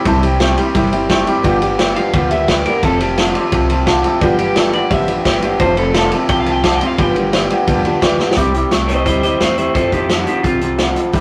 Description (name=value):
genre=rockabilly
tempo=173 BPM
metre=4/4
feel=straight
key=C major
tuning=A4 = 441 Hz
part: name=electric guitar through a small old amp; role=melody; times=0.0-11.1 s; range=Eb4 to G5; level=-22 LUFS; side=equal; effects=none
part: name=picked steel-string acoustic guitar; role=accompaniment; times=0.0-11.2 s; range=G2 to A4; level=-21 LUFS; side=equal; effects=none
part: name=electric guitar through a small old amp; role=riff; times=0.0-11.2 s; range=F2 to A3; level=-23 LUFS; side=equal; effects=none
part: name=warm upright piano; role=accompaniment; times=0.1-8.3 s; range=B4 to C6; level=-24 LUFS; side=equal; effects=none
part: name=upright bass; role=bass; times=0.1-11.2 s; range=F1 to F2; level=-25 LUFS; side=equal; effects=none
part: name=vintage drum kit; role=drums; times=0.1-11.2 s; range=hi-hat, kick drum, ride cymbal, snare drum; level=-20 LUFS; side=equal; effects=none
room=moderate small room reverb, RT60 0.6 s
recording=rough rehearsal-room recording, warm saturation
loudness=-15 LUFS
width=mono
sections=0.0-8.4 A section; 8.4-11.2 B section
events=upright piano fill 7.7-8.4; drum fill 8.2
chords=0.0 C; 1.4 G7; 2.8 F; 4.2 G7; 5.6 F; 7.0 G7; 8.4 C; 9.8 F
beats=| 0.06 0.40 0.75 1.10 | 1.44 1.79 2.14 2.48 | 2.83 3.18 3.52 3.87 | 4.22 4.56 4.91 5.25 | 5.60 5.95 6.29 6.64 | 6.98 7.33 7.67 8.02 | 8.37 8.71 9.06 9.40 | 9.75 10.10 10.44 10.79 | 11.13